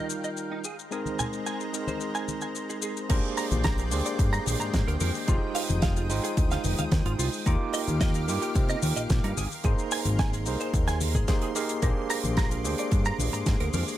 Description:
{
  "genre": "nu-disco, nu disco",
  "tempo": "110 BPM",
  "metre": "4/4",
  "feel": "straight",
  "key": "unclear",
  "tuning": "A4 = 440 Hz",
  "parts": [
    { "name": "overdriven tine electric piano", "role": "accompaniment", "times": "0.0-14.0 s", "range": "G3 to D6", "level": "-32 LUFS", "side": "right 1 dB", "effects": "auto-pan, sidechain pumping, digital delay" },
    { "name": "lush unison pad", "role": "sustained chords", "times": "0.0-14.0 s", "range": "Eb3 to Eb6", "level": "-37 LUFS", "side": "left 1 dB", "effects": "chorus, sidechain pumping" },
    { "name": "direct-recorded clean electric guitar", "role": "riff", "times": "0.0-13.8 s", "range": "Eb4 to Bb5", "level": "-35 LUFS", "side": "right 4 dB", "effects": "ensemble chorus, low-pass filter, digital delay" },
    { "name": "damped 70s drum kit", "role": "drums", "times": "0.1-14.0 s", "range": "crash cymbal, hi-hat, shaker, snare drum", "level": "-33 LUFS", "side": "equal", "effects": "studio reverb" },
    { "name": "congas", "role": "percussion", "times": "1.1-13.8 s", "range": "none", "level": "-36 LUFS", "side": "left 3 dB", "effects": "none" },
    { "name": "fat analog bass", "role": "bass", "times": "3.1-13.8 s", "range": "F1 to C3", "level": "-29 LUFS", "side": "equal", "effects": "sidechain pumping" },
    { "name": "electronic kick drum", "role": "drums", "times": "3.1-13.6 s", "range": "none", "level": "-26 LUFS", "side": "equal", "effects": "studio reverb" }
  ],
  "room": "small room ambience",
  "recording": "none",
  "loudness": "-25 LUFS",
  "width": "side -13 dB against mid",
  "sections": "0.0-3.1 A section; 3.1-14.0 B section",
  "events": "drop 3.1-14.0",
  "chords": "0.0 Ebadd9; 0.6 Abadd9; 3.1 Bb13; 5.3 Fm9; 7.5 Ebmaj9; 9.4 Abmaj9; 11.8 Bb13"
}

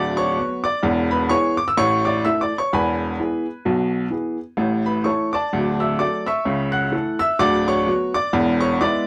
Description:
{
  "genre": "jazz, stride piano",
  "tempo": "128 BPM",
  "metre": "4/4",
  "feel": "swing 58% on 8ths",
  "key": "A major",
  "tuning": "A4 = 439 Hz",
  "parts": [
    { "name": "clear upright piano", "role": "solo", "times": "0.0-9.1 s", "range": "D1 to F#6", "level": "-20 LUFS", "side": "equal", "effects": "none" }
  ],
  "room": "moderate booth ambience, RT60 0.2 s",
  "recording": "none",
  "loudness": "-21 LUFS",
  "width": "mono",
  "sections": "0.0-9.1 A section",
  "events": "none",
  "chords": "0.0 Bm/D; 0.8 E; 1.8 A; 2.7 E; 4.6 A; 5.5 D; 6.5 A/C#; 7.4 Bm/D; 8.3 E7"
}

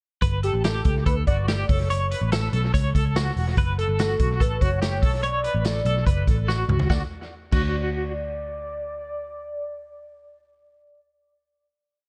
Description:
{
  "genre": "jangly indie pop",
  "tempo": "144 BPM",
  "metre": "4/4",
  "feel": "straight",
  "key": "D major",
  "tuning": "A4 = 440 Hz",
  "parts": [
    { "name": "twelve-string electric guitar", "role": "arpeggios", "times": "0.2-8.1 s", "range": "F#4 to C#5", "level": "-31 LUFS", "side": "equal", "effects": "tremolo, tape echo" },
    { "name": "vintage muted picked electric bass", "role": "bass", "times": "0.2-11.7 s", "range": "E1 to D2", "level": "-27 LUFS", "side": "equal", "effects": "none" },
    { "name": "vintage drum kit", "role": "drums", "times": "0.2-7.6 s", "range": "crash cymbal, hi-hat, kick drum, snare drum, toms", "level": "-26 LUFS", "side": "equal", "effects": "vintage 12-bit sampler grit, tape echo" },
    { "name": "warm velvety synth lead", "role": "melody", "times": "0.4-11.0 s", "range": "G4 to D5", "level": "-33 LUFS", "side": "equal", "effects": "chorus, tape echo" }
  ],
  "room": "small room ambience",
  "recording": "echo-heavy mix",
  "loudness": "-23 LUFS",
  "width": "mono",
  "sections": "0.2-6.9 verse; 6.9-10.2 final chord",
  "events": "drum fill 6.5-6.9",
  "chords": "0.2 Gadd9; 1.7 F#m; 3.6 F#madd11; 5.0 Bm7; 6.9 D"
}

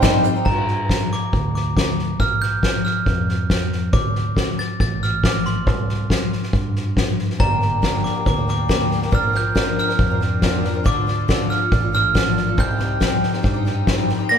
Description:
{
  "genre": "indie folk with a building arrangement",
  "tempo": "139 BPM",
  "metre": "4/4",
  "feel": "straight",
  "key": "G minor",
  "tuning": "A4 = 440 Hz",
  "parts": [
    { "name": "felt-muted upright piano", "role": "accompaniment", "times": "0.0-0.5 s", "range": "C2 to F5", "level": "-25 LUFS", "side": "right 1 dB", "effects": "none" },
    { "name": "picked twelve-string acoustic guitar", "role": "accompaniment", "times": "0.0-0.5, 7.4-14.4 s", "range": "G2 to Bb4", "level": "-24 LUFS", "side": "left 3 dB", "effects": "none" },
    { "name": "mandolin", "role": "arpeggios", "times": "0.0-0.5 s", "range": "C5 to C6", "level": "-24 LUFS", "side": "right 7 dB", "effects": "none" },
    { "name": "fingered electric bass", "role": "bass", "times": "0.0-14.1 s", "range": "G1 to G2", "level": "-26 LUFS", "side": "right 1 dB", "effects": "none" },
    { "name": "soft-mallet drum kit", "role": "drums", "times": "0.0-14.1 s", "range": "crash cymbal, kick drum, snare drum", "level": "-19 LUFS", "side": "equal", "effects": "none" },
    { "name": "glockenspiel with brass mallets", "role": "melody", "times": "0.5-14.4 s", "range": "Bb5 to Bb6", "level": "-24 LUFS", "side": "right 3 dB", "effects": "none" }
  ],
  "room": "moderate large studio reverb, RT60 1.0 s",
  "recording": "band playing live in one room",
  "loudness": "-17 LUFS",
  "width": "side -8 dB against mid",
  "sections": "0.5-14.3 A section",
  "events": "felt piano fill 0.0-0.5",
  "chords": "0.5 Gm; 2.2 Bb5; 3.9 D5; 5.7 C5; 7.4 Gm; 9.1 Bbadd9; 10.9 Dm; 12.6 Cm"
}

